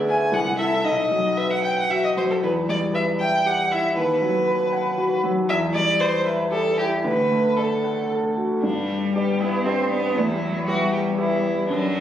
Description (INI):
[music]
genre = quick classical-period movement for piano trio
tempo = 117 BPM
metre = 3/4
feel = rubato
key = G major from 5.5 s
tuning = A4 = 443 Hz
[part]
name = bright grand piano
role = accompaniment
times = 0.0-12.0 s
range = B1 to F#5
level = -22 LUFS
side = equal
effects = none
[part]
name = clear violin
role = melody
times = 0.1-12.0 s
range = D4 to G#5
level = -23 LUFS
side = equal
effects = none
[part]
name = clear cello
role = second line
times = 8.6-12.0 s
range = F#3 to C4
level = -25 LUFS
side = equal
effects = none
[sound]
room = moderate concert hall reverb, RT60 2.3 s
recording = recorded on a phone in the room, club reverb, compression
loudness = -19 LUFS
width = side -10 dB against mid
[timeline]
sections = 0.0-8.6 A section; 8.6-12.0 B section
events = none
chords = 0.3 Am/C; 0.8 B; 2.4 Em; 4.0 B/D#; 5.5 Em; 7.0 D; 8.6 G; 10.2 Em